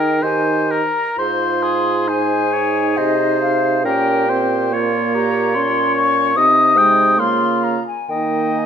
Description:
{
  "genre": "classical, slow romantic movement for wind quintet",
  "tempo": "59-74 BPM",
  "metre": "3/4",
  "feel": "rubato",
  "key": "Ab major",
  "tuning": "A4 = 440 Hz",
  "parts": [
    { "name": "baroque flute", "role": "melody", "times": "0.0-8.7 s", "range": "Eb5 to Eb6", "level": "-17 LUFS", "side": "left 4 dB", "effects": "none" },
    { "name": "warm oboe", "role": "second line", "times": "0.0-8.7 s", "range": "Ab4 to G5", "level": "-22 LUFS", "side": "left 2 dB", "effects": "none" },
    { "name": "clear French horn", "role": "accompaniment", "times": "0.0-8.7 s", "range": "Ab3 to F4", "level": "-23 LUFS", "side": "right 3 dB", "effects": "none" },
    { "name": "clear clarinet", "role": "accompaniment", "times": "0.0-8.7 s", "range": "Eb4 to Ab4", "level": "-24 LUFS", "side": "right 11 dB", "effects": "none" },
    { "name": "mellow bassoon", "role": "bass", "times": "0.0-8.7 s", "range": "Ab2 to Eb3", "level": "-22 LUFS", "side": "right 3 dB", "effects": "none" }
  ],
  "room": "moderate recital hall reverb, RT60 1.3 s",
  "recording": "minimal, uncompressed stereo recording",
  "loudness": "-14 LUFS",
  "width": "side -8 dB against mid",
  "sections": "0.0-8.7 A section",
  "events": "none",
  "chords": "0.2 Eb; 1.2 Ab; 3.8 Gdim/Bb; 6.4 Ab/C; 7.2 Bbm/Db; 8.1 Eb",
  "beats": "0.22 | 1.17 2.07 2.97 | 3.85 4.72 5.55 | 6.37 7.19 8.10"
}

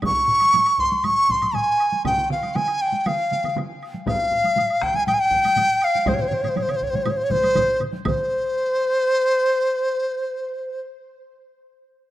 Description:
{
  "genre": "japanese traditional, taiko drum ensemble",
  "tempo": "120 BPM",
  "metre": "4/4",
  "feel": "straight",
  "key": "C miyako bushi",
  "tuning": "A4 = 436 Hz",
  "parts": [
    { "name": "taiko ensemble", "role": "percussion", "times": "0.0-8.3 s", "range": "none", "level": "-30 LUFS", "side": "equal", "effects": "none" },
    { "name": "taiko ensemble", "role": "percussion", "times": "0.0-8.5 s", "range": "none", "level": "-33 LUFS", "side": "left 3 dB", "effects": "none" },
    { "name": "taiko ensemble", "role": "percussion", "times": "0.0-8.3 s", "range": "none", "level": "-32 LUFS", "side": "equal", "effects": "none" },
    { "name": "woodblock", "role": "percussion", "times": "0.0-8.3 s", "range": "none", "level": "-35 LUFS", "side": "right 3 dB", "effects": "none" },
    { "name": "mellow dizi", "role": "melody", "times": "0.1-10.8 s", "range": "C5 to Db6", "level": "-19 LUFS", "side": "equal", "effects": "slapback echo" },
    { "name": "taiko ensemble", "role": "percussion", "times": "2.1-8.5 s", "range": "none", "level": "-32 LUFS", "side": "right 3 dB", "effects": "none" }
  ],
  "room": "moderate plate reverb, RT60 3.4 s",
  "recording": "rough home demo mix",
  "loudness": "-18 LUFS",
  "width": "side -14 dB against mid",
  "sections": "0.0-8.1 A section; 8.1-10.1 B section",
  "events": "none",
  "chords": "none",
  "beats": "| 0.03 0.54 1.04 1.55 | 2.05 2.56 3.06 3.56 | 4.06 4.56 5.07 5.57 | 6.07 6.57 7.07 7.56 | 8.06 8.56 9.06 9.55"
}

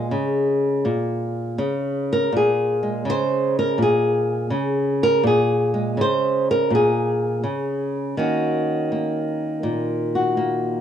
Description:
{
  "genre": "solo jazz",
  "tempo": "82 BPM",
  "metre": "4/4",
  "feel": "swing 68% on 8ths",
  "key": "Bb minor",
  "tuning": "A4 = 440 Hz",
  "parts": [
    { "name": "flamenco guitar", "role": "solo", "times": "0.0-10.8 s", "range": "Bb2 to C5", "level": "-19 LUFS", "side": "equal", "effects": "none" }
  ],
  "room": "light reverb",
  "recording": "dry, close 1970s-style studio recording",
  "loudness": "-19 LUFS",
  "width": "side -9 dB against mid",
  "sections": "0.0-10.8 A section",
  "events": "nylon-string guitar solo 0.0-10.8",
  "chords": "0.0 Bbm7; 8.2 Ebm7",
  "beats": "0.12 0.86 1.59 | 2.32 3.06 3.79 4.52 | 5.25 5.99 6.72 7.45 | 8.18 8.91 9.64 10.38"
}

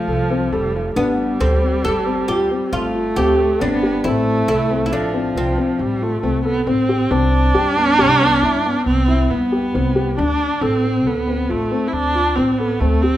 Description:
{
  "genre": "contemporary instrumental, chamber music in an uneven meter",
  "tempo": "137 BPM",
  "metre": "7/4",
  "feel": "straight",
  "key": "unclear",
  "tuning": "A4 = 440 Hz",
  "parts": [
    { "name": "oud", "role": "melody", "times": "0.0-6.6 s", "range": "A3 to A4", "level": "-21 LUFS", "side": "right 1 dB", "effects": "none" },
    { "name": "rich viola", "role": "second line", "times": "0.0-13.2 s", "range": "F3 to E4", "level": "-19 LUFS", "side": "right 2 dB", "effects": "none" },
    { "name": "dark concert grand piano", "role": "arpeggios", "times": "0.0-13.2 s", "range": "B3 to A4", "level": "-21 LUFS", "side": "left 3 dB", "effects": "none" },
    { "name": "upright bass", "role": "bass", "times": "0.0-13.2 s", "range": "F1 to G2", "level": "-22 LUFS", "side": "right 1 dB", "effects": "none" }
  ],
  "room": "moderate recital hall reverb, RT60 1.3 s",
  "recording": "minimal, uncompressed stereo recording",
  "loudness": "-15 LUFS",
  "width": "side -13 dB against mid",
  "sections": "1.0-13.2 A section",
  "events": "none",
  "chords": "0.0 F; 1.0 G9sus4; 4.0 Fmaj7/A; 7.1 Cmaj7; 10.2 Dm7",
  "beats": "0.08 0.52 | 0.96 1.40 1.84 2.28 2.72 3.16 3.60 | 4.04 4.48 4.92 5.36 5.80 6.24 6.68 | 7.12 7.56 8.00 8.43 8.87 9.31 9.75 | 10.19 10.62 11.06 11.50 11.94 12.38 12.81"
}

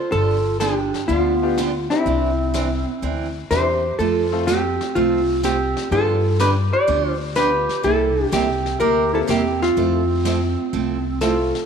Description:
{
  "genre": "country, western swing",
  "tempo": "124 BPM",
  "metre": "4/4",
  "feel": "swing 69% on 8ths",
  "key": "F major",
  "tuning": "A4 = 439 Hz",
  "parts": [
    { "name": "vintage hollow-body jazz guitar", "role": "melody", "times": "0.0-11.7 s", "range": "E4 to D5", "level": "-20 LUFS", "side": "left 1 dB", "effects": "slapback echo" },
    { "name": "breathy clarinet", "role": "second line", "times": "0.0-11.7 s", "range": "B3 to G4", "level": "-26 LUFS", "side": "right 7 dB", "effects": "none" },
    { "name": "picked steel-string acoustic guitar", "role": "accompaniment", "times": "0.1-11.3 s", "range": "C3 to A4", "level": "-26 LUFS", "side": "right 8 dB", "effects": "none" },
    { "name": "upright bass", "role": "bass", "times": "0.1-11.5 s", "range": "G1 to G2", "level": "-24 LUFS", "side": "left 2 dB", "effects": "none" },
    { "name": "vintage brush drum kit", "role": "drums", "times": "0.1-11.7 s", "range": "brushed snare drum, hi-hat, snare drum", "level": "-34 LUFS", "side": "left 10 dB", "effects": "none" },
    { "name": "clear upright piano", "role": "accompaniment", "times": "1.4-11.5 s", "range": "A3 to A4", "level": "-29 LUFS", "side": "left 12 dB", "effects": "none" }
  ],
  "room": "moderate echo chamber reverb, RT60 2.3 s",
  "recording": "1960s-style stereo with parts hard left and right",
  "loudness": "-17 LUFS",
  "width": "side -7 dB against mid",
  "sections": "0.0-11.7 A section",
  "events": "none",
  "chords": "0.1 G7; 2.1 Cadd9; 4.0 F; 5.9 G7; 7.8 C7; 9.8 Fmaj7",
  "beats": "| 0.13 0.61 1.09 1.57 | 2.06 2.54 3.02 3.50 | 3.99 4.47 4.95 5.43 | 5.92 6.40 6.88 7.36 | 7.84 8.33 8.81 9.29 | 9.77 10.25 10.73 11.22"
}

